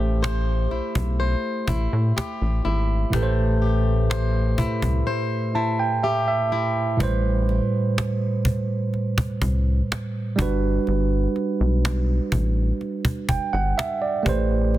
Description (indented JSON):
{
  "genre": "contemporary R&B",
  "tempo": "62 BPM",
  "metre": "4/4",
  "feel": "straight",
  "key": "A dorian",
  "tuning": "A4 = 445 Hz",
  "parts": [
    { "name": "tine electric piano", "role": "accompaniment", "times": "0.0-14.8 s", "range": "A2 to A5", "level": "-24 LUFS", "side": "right 3 dB", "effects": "none" },
    { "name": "fingerpicked plugged-in swing-style acoustic guitar", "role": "arpeggios", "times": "0.0-7.6 s", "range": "A3 to C5", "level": "-28 LUFS", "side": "left 4 dB", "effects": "ping-pong delay" },
    { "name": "rubbery square bass", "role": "bass", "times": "0.0-14.8 s", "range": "G1 to A2", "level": "-22 LUFS", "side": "equal", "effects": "none" },
    { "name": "cajon", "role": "drums", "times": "0.2-14.8 s", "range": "none", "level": "-25 LUFS", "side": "equal", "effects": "none" }
  ],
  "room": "studio ambience",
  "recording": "dense, heavily limited modern master",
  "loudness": "-20 LUFS",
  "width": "side -14 dB against mid",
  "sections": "0.0-7.0 A section; 7.0-14.8 B section",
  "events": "tine electric piano fill 5.1-7.0",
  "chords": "0.0 Am7; 7.0 Am9; 10.4 Gmaj13; 14.3 Am9",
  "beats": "0.23 1.20 2.16 | 3.13 4.10 5.07 6.03 | 7.00 7.97 8.94 9.90 | 10.87 11.84 12.81 13.78 | 14.74"
}